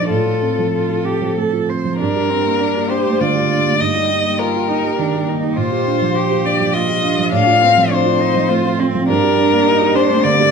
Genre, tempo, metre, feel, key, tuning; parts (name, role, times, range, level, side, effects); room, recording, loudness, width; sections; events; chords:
neoclassical piano and strings; 102 BPM; 3/4; rubato; G minor; A4 = 441 Hz
rich violin; melody; 0.0-10.5 s; A4 to F5; -17 LUFS; left 6 dB
rich cello; second line; 0.0-10.5 s; Bb3 to C5; -22 LUFS; right 6 dB
felt-muted upright piano; accompaniment; 0.0-10.5 s; G2 to G4; -18 LUFS; right 6 dB
warbly tape-like pad; sustained chords; 2.0-10.5 s; Bb3 to G5; -26 LUFS; left 2 dB; chorus, built-in reverb
moderate recital hall reverb, RT60 1.6 s; minimal, uncompressed stereo recording; -14 LUFS; side -6 dB against mid
0.0-2.0 A section; 2.0-10.5 A section
0.1 F/A; 2.0 Gmadd9; 3.8 Eb/G; 5.6 Bb6; 7.3 F/A; 9.1 Gmadd9